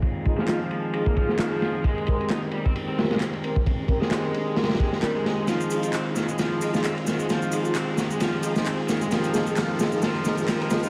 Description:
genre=breakbeat, breaks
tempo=132 BPM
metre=4/4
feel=swing 56% on 16ths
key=F minor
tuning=A4 = 440 Hz
part: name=tonewheel organ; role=sustained chords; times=0.0-10.9 s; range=Eb3 to Bb4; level=-32 LUFS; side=equal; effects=slow rotary speaker, sidechain pumping
part: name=crunchy breakbeat drum kit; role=drums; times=0.0-10.8 s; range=kick drum, ride cymbal, snare drum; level=-28 LUFS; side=equal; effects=low-pass filter on kick, low-pass filter on cymbals, low-pass filter on snare, low-pass filter on room
part: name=riser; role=sound effects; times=2.9-10.9 s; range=none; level=-40 LUFS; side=equal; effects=none
part: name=mellow brass ensemble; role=stabs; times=0.3-10.9 s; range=C4 to Bb4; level=-33 LUFS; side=equal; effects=vintage 12-bit sampler grit, low-pass filter, digital delay
part: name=raw garage guitar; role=riff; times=0.4-10.9 s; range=Eb3 to Eb4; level=-32 LUFS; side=equal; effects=overdrive, vintage 12-bit sampler grit, low-pass filter, digital delay
part: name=electronic handclaps and shaker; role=drums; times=0.5-10.9 s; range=none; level=-38 LUFS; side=equal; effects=none
room=light reverb, small room ambience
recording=vinyl crackle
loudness=-25 LUFS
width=mono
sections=0.0-10.9 A section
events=build-up 0.0-10.9; filter sweep on drum 0.0-10.9; filter sweep on brass ensemble 0.0-10.9; drum fill 5.5-10.9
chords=0.0 Fm7; 1.8 Abmaj9; 5.5 Fm7; 9.1 Abmaj9

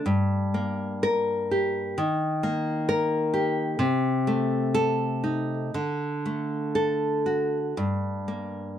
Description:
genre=romantic piece for solo classical guitar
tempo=58-66 BPM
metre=2/4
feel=rubato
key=G minor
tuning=A4 = 440 Hz
part: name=nylon-string guitar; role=solo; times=0.0-8.8 s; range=G2 to Bb4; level=-24 LUFS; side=left 1 dB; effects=none
room=light reverb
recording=dry, close 1970s-style studio recording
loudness=-24 LUFS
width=side -10 dB against mid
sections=0.0-8.8 A section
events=none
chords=0.0 Gm; 2.0 Eb; 3.8 Adim/C; 5.7 D; 7.8 Gm

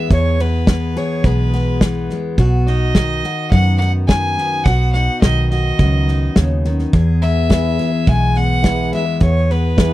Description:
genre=honky-tonk and classic country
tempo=106 BPM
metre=4/4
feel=straight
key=E major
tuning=A4 = 439 Hz
part: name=clear fiddle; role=melody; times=0.0-9.9 s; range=B4 to G#5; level=-21 LUFS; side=equal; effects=none
part: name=picked steel-string acoustic guitar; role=accompaniment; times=0.0-9.9 s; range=E2 to G#4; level=-20 LUFS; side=left 2 dB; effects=none
part: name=vintage muted fingered electric bass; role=bass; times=0.1-9.9 s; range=B1 to F#2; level=-16 LUFS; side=right 1 dB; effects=none
part: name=natural country drum kit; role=drums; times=0.1-9.9 s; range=hi-hat, kick drum, snare drum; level=-14 LUFS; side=equal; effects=none
part: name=tonewheel organ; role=accompaniment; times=7.5-9.9 s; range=E4 to B4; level=-24 LUFS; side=right 7 dB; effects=slow rotary speaker, overdrive
room=little or no reverb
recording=dry, close 1970s-style studio recording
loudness=-13 LUFS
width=side -15 dB against mid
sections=0.0-9.9 A section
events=none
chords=0.0 E; 2.4 B; 6.9 E

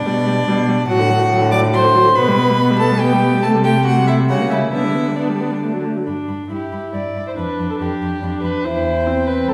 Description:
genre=quick classical-period movement for string quartet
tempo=141 BPM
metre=3/4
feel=straight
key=G major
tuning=A4 = 441 Hz
part: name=warm violin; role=melody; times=0.0-9.5 s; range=D5 to D6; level=-22 LUFS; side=equal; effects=none
part: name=dark violin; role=second line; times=0.0-9.5 s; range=D4 to D5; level=-24 LUFS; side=equal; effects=none
part: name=dark viola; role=accompaniment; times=0.1-9.5 s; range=D3 to E4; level=-22 LUFS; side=equal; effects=none
part: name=warm cello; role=bass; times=0.1-9.5 s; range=C2 to D3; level=-22 LUFS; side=equal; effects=none
room=wet recital hall reverb, RT60 1.5 s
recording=heard from further back in the room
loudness=-17 LUFS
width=mono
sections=0.0-6.1 A section; 6.1-9.5 B section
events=none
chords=0.0 G/B; 0.9 D7/A; 2.2 G/B; 3.4 Am7/C; 4.3 C#dim7; 4.7 G/D; 5.6 D; 6.1 G; 7.4 G7/F; 8.6 C/E

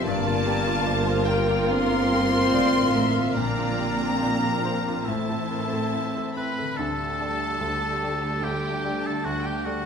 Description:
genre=cinematic, emotional film score for orchestra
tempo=69-75 BPM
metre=4/4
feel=rubato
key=unclear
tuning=A4 = 440 Hz
part: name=rich symphonic violin section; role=melody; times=0.0-9.9 s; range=F#5 to C6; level=-31 LUFS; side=left 3 dB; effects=none
part: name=silver concert flute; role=second line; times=0.0-6.3 s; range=G5 to C6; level=-34 LUFS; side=left 2 dB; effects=none
part: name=warm symphonic violin section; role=second line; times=0.0-9.9 s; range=Bb4 to B5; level=-34 LUFS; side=left 4 dB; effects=none
part: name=bright baby grand piano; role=accompaniment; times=0.0-9.9 s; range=D2 to E5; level=-33 LUFS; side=left 1 dB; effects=none
part: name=mellow French horn section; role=sustained chords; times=0.0-9.9 s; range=G3 to D4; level=-28 LUFS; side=equal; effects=none
part: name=concert harp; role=arpeggios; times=0.0-9.9 s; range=G2 to E6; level=-35 LUFS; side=left 9 dB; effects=none
part: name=rich symphonic cello section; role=bass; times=0.0-9.9 s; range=G2 to D3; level=-32 LUFS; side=right 4 dB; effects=none
part: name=clear oboe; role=second line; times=0.1-9.9 s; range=F#4 to F5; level=-32 LUFS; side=equal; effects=none
part: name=warm clarinet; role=second line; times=0.1-6.4 s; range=Bb3 to C4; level=-34 LUFS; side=left 2 dB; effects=none
part: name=warm chamber viola section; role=accompaniment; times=0.1-9.9 s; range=G3 to Bb4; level=-31 LUFS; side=right 1 dB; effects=none
part: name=rich symphonic double bass section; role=bass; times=0.1-9.9 s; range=G1 to D2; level=-33 LUFS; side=right 4 dB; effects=none
room=wet scoring stage reverb, RT60 1.6 s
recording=minimal, uncompressed stereo recording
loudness=-22 LUFS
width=side -6 dB against mid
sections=0.0-6.8 A section; 6.8-9.9 B section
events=none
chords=0.1 Gm7; 3.4 Bbadd9; 5.1 Am; 6.8 Dsus4

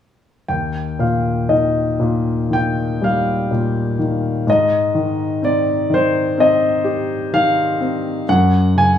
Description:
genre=classical, lyrical solo piano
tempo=59-63 BPM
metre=4/4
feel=rubato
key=Eb major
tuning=A4 = 440 Hz
part: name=warm concert grand piano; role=solo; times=0.5-9.0 s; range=Eb2 to Ab5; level=-15 LUFS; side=left 1 dB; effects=none
room=light reverb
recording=studio reverb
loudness=-15 LUFS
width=side -9 dB against mid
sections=0.5-9.0 A section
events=none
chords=0.5 Eb; 4.5 Abmaj7; 8.3 Gbsus2

